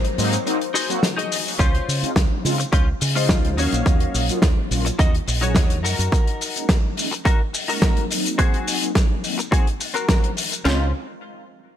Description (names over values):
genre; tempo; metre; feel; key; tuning
nu-disco, nu disco; 106 BPM; 4/4; straight; Db major; A4 = 440 Hz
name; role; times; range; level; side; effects
vibraphone with hard mallets; melody; 0.0-1.0 s; C5; -32 LUFS; left 11 dB; digital delay
direct-recorded clean electric guitar; riff; 0.0-10.9 s; C4 to Eb5; -27 LUFS; left 4 dB; ensemble chorus, low-pass filter, digital delay
damped 70s drum kit; drums; 0.0-10.6 s; hi-hat, shaker, snare drum; -23 LUFS; left 2 dB; gated reverb
mellow synth brass; accompaniment; 0.2-10.9 s; Gb3 to F5; -27 LUFS; equal; chorus, phaser, sidechain pumping, digital delay
fingered electric bass with an envelope filter; bass; 0.2-6.1, 10.7-10.9 s; Bb1 to Db3; -23 LUFS; right 1 dB; sidechain pumping
house drum kit; drums; 1.6-10.8 s; kick drum, snare drum; -19 LUFS; right 1 dB; overdrive
room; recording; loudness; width
studio ambience; bright 1980s-style digital production; -18 LUFS; side -10 dB against mid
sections
0.0-1.6 A section; 1.6-10.7 B section; 10.7-11.8 C section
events
drop 0.0-1.6; filter sweep on analog polysynth 1.6-10.7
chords
0.0 Ab7; 1.6 Dbmaj7; 3.6 Ebm7; 5.8 Gb6; 8.4 Ab7; 10.7 Dbmaj7